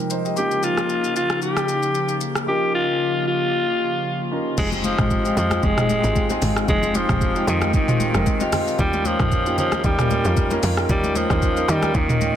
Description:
amapiano; 114 BPM; 4/4; swing 55% on 16ths; F minor; A4 = 443 Hz
warm concert grand piano; accompaniment; 0.0-12.4 s; G3 to Eb5; -26 LUFS; right 1 dB; low-pass filter
hollow soft pad; sustained chords; 0.0-12.4 s; C3 to G5; -29 LUFS; left 1 dB; chorus, sidechain pumping, low-pass filter
smooth R&B drum kit; drums; 0.1-12.3 s; crash cymbal, hi-hat, kick drum, rim click, shaker, toms; -23 LUFS; equal; vintage 12-bit sampler grit, soft clipping on snare
growling alto saxophone; melody; 0.4-12.4 s; Eb3 to G4; -22 LUFS; left 1 dB; low-pass filter, ping-pong delay
tight log drum bass; bass; 4.6-12.3 s; F1 to Eb3; -25 LUFS; equal
congas; percussion; 4.6-12.3 s; -29 LUFS; left 3 dB
light reverb; dense, heavily limited modern master; -18 LUFS; side -10 dB against mid
0.0-4.6 A section; 4.6-12.4 B section
drop 4.6-12.4
0.4 Eb9; 4.6 Fm9; 8.8 Eb9

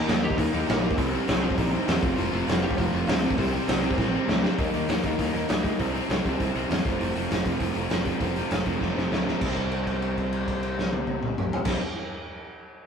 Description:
punk rock; 199 BPM; 4/4; straight; C dorian; A4 = 440 Hz
overdriven electric guitar; riff; 0.0-11.8 s; F2 to Eb4; -30 LUFS; left 7 dB
overdriven semi-hollow guitar; riff; 0.0-11.8 s; F2 to G4; -30 LUFS; right 6 dB
modern bright picked electric bass; bass; 0.1-11.8 s; F1 to E2; -31 LUFS; left 1 dB
raw garage drum kit; drums; 0.1-11.7 s; crash cymbal, hi-hat, kick drum, snare drum, toms; -27 LUFS; equal
lightly driven lead guitar; melody; 0.2-4.2 s; F3 to Eb5; -31 LUFS; right 1 dB
light reverb; rough rehearsal-room recording; -23 LUFS; side -6 dB against mid
0.0-4.6 A section; 4.6-9.4 B section; 9.4-11.8 C section
drum fill 4.0-4.6, 8.8-9.4; held note 9.4-11.7
0.0 Eb; 1.0 Cm; 2.0 F; 3.4 Cm; 4.6 Eb; 5.8 Cm; 6.8 F; 9.4 Cm

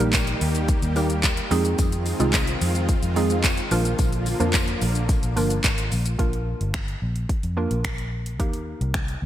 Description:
dance-pop; 109 BPM; 4/4; straight; A4 = 440 Hz
hollow square pluck; accompaniment; 0.0-9.3 s; F3 to Bb4; -27 LUFS; right 2 dB; chorus, sidechain pumping
supersaw pad; sustained chords; 0.0-6.2 s; D3 to G4; -29 LUFS; equal; lush chorus, sidechain pumping
vintage muted fingered electric bass; bass; 0.0-9.3 s; G1 to F2; -25 LUFS; equal; sidechain pumping
house drum kit; drums; 0.0-9.2 s; finger snaps, handclaps, hi-hat, kick drum, shaker; -24 LUFS; equal; gated reverb
tambourine; percussion; 0.1-6.0 s; -40 LUFS; left 6 dB
light reverb; bright 1980s-style digital production; -20 LUFS; side -12 dB against mid
0.0-6.2 A section; 6.2-9.3 B section
0.0 Eb; 1.5 Fm7; 3.7 Bb; 8.4 Eb

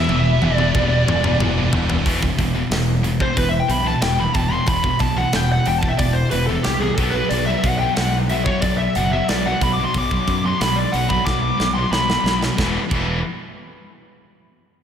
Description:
heavy metal; 91 BPM; 4/4; straight; E minor; A4 = 440 Hz
bluesy overdriven lead guitar; melody; 0.0-12.4 s; G4 to D6; -22 LUFS; left 1 dB; distortion
heavy high-gain guitar; riff; 0.0-13.2 s; E2 to B3; -24 LUFS; left 6 dB; distortion
heavy high-gain guitar; riff; 0.0-2.0 s; E3 to E4; -27 LUFS; right 2 dB; distortion, slapback echo
scooped high-gain guitar; riff; 0.0-13.2 s; E2 to B3; -25 LUFS; right 6 dB; distortion
growling fingered electric bass; bass; 0.0-13.2 s; E1 to F#2; -23 LUFS; equal; overdrive
tight metal drum kit; drums; 0.1-13.1 s; crash cymbal, hi-hat, kick drum, snare drum, toms; -24 LUFS; equal
moderate lush hall reverb, RT60 2.6 s; big arena sound; -16 LUFS; side -8 dB against mid
0.0-2.1 A section; 2.1-12.6 B section; 12.6-14.8 C section
drum fill 0.0-2.1, 11.3-12.6; lead electric guitar solo 2.1-12.6
0.0 Em; 2.1 E5; 7.0 B5; 12.6 E5

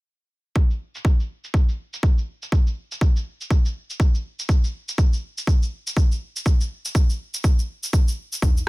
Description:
afro house; 122 BPM; 4/4; swing 59% on 16ths
electronic kick drum; drums; 0.6-8.5 s; -18 LUFS; equal
shaker; drums; 0.6-8.7 s; -32 LUFS; equal; low-pass filter on perc, low-pass filter on snare, low-pass filter on room
djembe; percussion; 8.4-8.5 s; -27 LUFS; left 1 dB
little or no reverb; -20 LUFS; side -23 dB against mid
0.6-8.7 A section

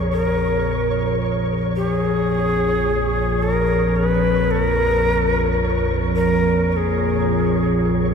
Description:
dark ambient drone; 54 BPM; 4/4; straight; A4 = 440 Hz
analog drone; drone; 0.0-8.1 s; Bb1 to F2; -20 LUFS; equal; chorus
flickering grainy texture; texture; 0.0-8.1 s; Db5; -28 LUFS; equal; built-in reverb
breathy bright shakuhachi; melody; 0.1-8.1 s; Ab4 to Cb5; -20 LUFS; equal; diffuse ambient delay
wet huge ambient reverb, RT60 8.8 s; faint mains hum; -17 LUFS; side -6 dB against mid
0.0-8.1 A section
0.0 Bbm

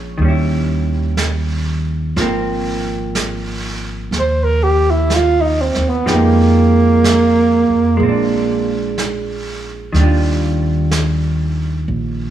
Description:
jazz ballad; 62 BPM; 4/4; swing 68% on 8ths; Eb major; A4 = 440 Hz
vintage hollow-body jazz guitar; accompaniment; 0.0-12.3 s; Eb3 to G4; -20 LUFS; equal
upright bass; bass; 0.0-12.3 s; Ab1 to F2; -18 LUFS; right 1 dB
vintage brush drum kit; drums; 0.2-12.3 s; brushed snare drum, hi-hat, snare drum; -25 LUFS; right 3 dB
breathy tenor saxophone; melody; 4.2-9.0 s; Bb3 to C5; -14 LUFS; right 3 dB
light reverb; small room ambience; -13 LUFS; side -11 dB against mid
0.0-12.3 A section
tenor saxophone solo 0.0-12.3
0.2 Eb7b9; 2.2 Ab69; 6.1 Fm9; 8.0 Bb9; 9.9 Ebmaj9

